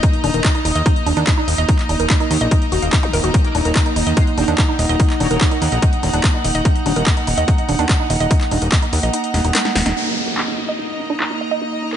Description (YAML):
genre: psychedelic trance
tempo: 145 BPM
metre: 4/4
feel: straight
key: Eb minor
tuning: A4 = 442 Hz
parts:
  - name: evolving wavetable pad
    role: sustained chords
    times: 0.0-12.0 s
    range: Eb4 to Gb5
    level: -25 LUFS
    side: right 1 dB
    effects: chorus, built-in reverb, vintage 12-bit sampler grit, sidechain pumping
  - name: woody wave-folded pluck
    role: riff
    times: 0.0-11.9 s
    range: D4 to F5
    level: -23 LUFS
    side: moving between left 5 dB and right 9 dB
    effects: chorus, auto-pan, vintage 12-bit sampler grit, sidechain pumping, digital delay
  - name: electronic kick drum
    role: drums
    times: 0.0-8.8 s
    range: none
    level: -16 LUFS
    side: equal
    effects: overdrive, studio reverb
  - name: techno drum kit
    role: drums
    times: 0.0-12.0 s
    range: crash cymbal, handclaps, hi-hat, snare drum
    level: -23 LUFS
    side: left 1 dB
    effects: overdrive, low-pass filter on hats, studio reverb, low-pass filter on cymbals, low-pass filter on snare
  - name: rich studio string section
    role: texture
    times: 0.0-12.0 s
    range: Bb3 to Bb5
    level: -25 LUFS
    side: right 2 dB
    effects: sidechain pumping
  - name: fat analog bass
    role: bass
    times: 0.2-9.9 s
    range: Eb1 to Eb2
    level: -19 LUFS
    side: left 1 dB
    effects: none
  - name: zap and downlifter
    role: sound effects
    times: 3.0-3.1, 10.0-12.0 s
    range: none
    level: -26 LUFS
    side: equal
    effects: none
  - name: metallic wobble bass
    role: second line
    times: 3.4-5.5 s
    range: Eb3 to Bb3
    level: -33 LUFS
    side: left 4 dB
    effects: analog chorus, sidechain pumping, high-pass filter, tape echo
room: light reverb, digital ambience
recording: nothing above 10.3 kHz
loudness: -14 LUFS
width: side -10 dB against mid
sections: 0.0-10.0 A section; 10.0-12.0 B section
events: kick drops out 9.1-10.0; drum fill 9.3-10.0; band accent 9.9; filter sweep on synth arpeggio sound 10.0-12.0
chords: 0.0 Eb5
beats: | 0.03 0.45 0.86 1.27 | 1.69 2.10 2.51 2.93 | 3.34 3.75 4.17 4.58 | 5.00 5.41 5.82 6.24 | 6.65 7.07 7.48 7.89 | 8.31 8.72 9.13 9.55 | 9.96 10.38 10.79 11.20 | 11.62